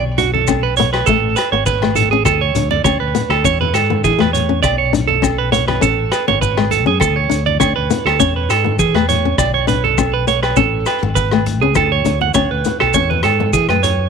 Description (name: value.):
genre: highlife guitar band.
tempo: 101 BPM.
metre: 4/4.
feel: straight.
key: A major.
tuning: A4 = 439 Hz.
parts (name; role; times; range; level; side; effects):
clean electric guitar; arpeggios; 0.0-14.1 s; F#4 to F#5; -16 LUFS; right 14 dB; tape echo.
fingered electric bass; bass; 0.0-14.1 s; G#1 to E3; -20 LUFS; left 1 dB; none.
flamenco guitar; accompaniment; 0.2-13.9 s; G#3 to D4; -20 LUFS; left 11 dB; none.
vintage drum kit; drums; 0.2-14.0 s; hi-hat, kick drum, rim click; -23 LUFS; left 4 dB; none.
congas; percussion; 0.2-14.0 s; none; -25 LUFS; left 8 dB; none.
maracas; percussion; 0.2-14.0 s; none; -26 LUFS; left 14 dB; none.
agogo bells; percussion; 0.5-13.8 s; none; -26 LUFS; left 15 dB; none.
room: light reverb, small room ambience.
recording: 1960s-style stereo with parts hard left and right.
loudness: -13 LUFS.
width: side -6 dB against mid.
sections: 0.0-14.1 A section.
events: none.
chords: 0.0 Bm; 1.1 Amaj7; 2.3 D5; 3.5 E; 4.6 Bm; 5.8 Amaj7; 7.0 D5; 8.2 E; 9.4 Bm; 10.6 Amaj7; 11.8 Dmaj7(no3); 12.9 E.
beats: 0.48 | 1.07 1.67 2.26 2.86 | 3.45 4.04 4.64 5.23 | 5.83 6.42 7.01 7.61 | 8.20 8.79 9.38 9.98 | 10.57 11.16 11.76 12.35 | 12.94 13.54.